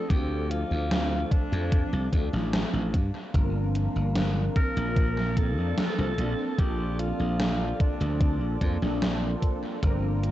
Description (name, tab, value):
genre	vaporwave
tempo	74 BPM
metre	4/4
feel	straight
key	unclear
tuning	A4 = 439 Hz
part	growling alto saxophone	melody	0.0-9.0 s	D4 to Bb4	-35 LUFS	left 1 dB	tape echo
part	mellow synth brass	accompaniment	0.0-10.3 s	F3 to Bb4	-32 LUFS	equal	analog chorus, tape echo
part	warbly tape-like pad	sustained chords	0.0-10.3 s	Bb3 to D6	-41 LUFS	left 1 dB	chorus, built-in reverb
part	glassy slap bass	bass	0.1-10.3 s	G1 to G2	-28 LUFS	equal	tube saturation
part	electronic kick drum	drums	0.1-10.0 s	none	-25 LUFS	equal	overdrive, vintage 12-bit sampler grit
part	gated 80s digital drum machine	drums	0.1-10.3 s	hi-hat, snare drum	-31 LUFS	equal	gated reverb, gated reverb snare, overdrive, vintage 12-bit sampler grit, tape echo
room	light reverb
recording	echo-heavy mix, cassette tape, nothing above 8.0 kHz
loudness	-24 LUFS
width	side -14 dB against mid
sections	0.0-10.3 A section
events	none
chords	0.0 Dm7; 2.9 Gm11; 6.2 Bbmaj9